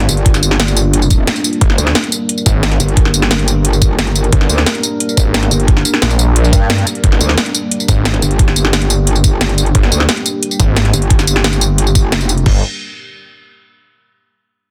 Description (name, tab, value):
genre	dark technical drum and bass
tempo	177 BPM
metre	4/4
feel	straight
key	G phrygian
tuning	A4 = 441 Hz
part	dark analog pad	sustained chords	0.0-12.6 s	G3 to Bb4	-23 LUFS	equal	chorus, phaser, sidechain pumping
part	snarling distorted saw bass	bass	0.0-12.6 s	G1 to Bb1	-16 LUFS	equal	distortion, overdrive
part	drum and bass drum kit	drums	0.0-12.5 s	crash cymbal, hi-hat, snare drum, tambourine	-18 LUFS	equal	none
part	metallic wobble bass	bass	0.1-12.4 s	G1 to G2	-16 LUFS	equal	chorus
part	electronic kick drum	drums	0.3-12.5 s	none	-14 LUFS	equal	none
room	digital ambience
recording	dense, heavily limited modern master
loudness	-13 LUFS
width	mono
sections	0.0-12.5 A section; 12.5-13.8 B section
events	drop 0.0-12.5; break 1.3-1.6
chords	0.0 Gm